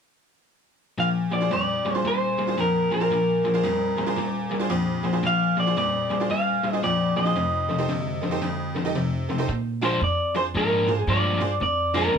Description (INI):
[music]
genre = electric blues shuffle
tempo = 113 BPM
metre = 4/4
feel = swing 63% on 8ths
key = Bb mixolydian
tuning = A4 = 440 Hz
[part]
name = electric guitar through a small old amp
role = melody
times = 1.0-12.2 s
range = Bb4 to F5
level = -24 LUFS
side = right 1 dB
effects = none
[part]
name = tack piano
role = accompaniment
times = 1.0-12.0 s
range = F2 to D6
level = -29 LUFS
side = right 5 dB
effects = none
[part]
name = overdriven semi-hollow guitar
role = riff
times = 1.0-12.2 s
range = F2 to D4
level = -26 LUFS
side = left 3 dB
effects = none
[part]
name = upright bass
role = bass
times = 9.5-12.2 s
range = Eb2 to Bb2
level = -27 LUFS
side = right 2 dB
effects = none
[sound]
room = light reverb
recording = band playing live in one room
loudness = -21 LUFS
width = side -7 dB against mid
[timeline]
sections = 1.0-9.5 A section; 9.5-12.2 B section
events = honky-tonk piano fill 4.4-5.2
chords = 1.0 Bb7; 7.4 F7; 9.5 Bb7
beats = | 0.98 1.51 2.05 2.58 | 3.11 3.64 4.17 4.71 | 5.24 5.77 6.30 6.83 | 7.36 7.89 8.42 8.95 | 9.48 10.02 10.55 11.08 | 11.61 12.14